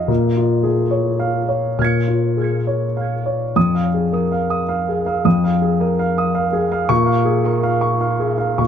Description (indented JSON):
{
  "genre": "neoclassical minimalist piano",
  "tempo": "101-111 BPM",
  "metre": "3/4",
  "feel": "rubato",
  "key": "F minor",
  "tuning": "A4 = 441 Hz",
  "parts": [
    { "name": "warm concert grand piano", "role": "solo", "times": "0.0-8.7 s", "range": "F2 to Db7", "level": "-16 LUFS", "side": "equal", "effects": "tape echo" }
  ],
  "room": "light reverb",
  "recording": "close, detailed microphones",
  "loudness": "-16 LUFS",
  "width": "side -8 dB against mid",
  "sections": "0.0-3.6 A section; 3.6-8.7 A section",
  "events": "none",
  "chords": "0.1 Bbm7; 3.6 Fm7; 6.9 Bbm7",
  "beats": "| 0.10 0.64 1.21 | 1.79 2.38 2.97 | 3.56 4.13 4.69 | 5.25 5.80 6.36 | 6.90 7.45 8.02 | 8.59"
}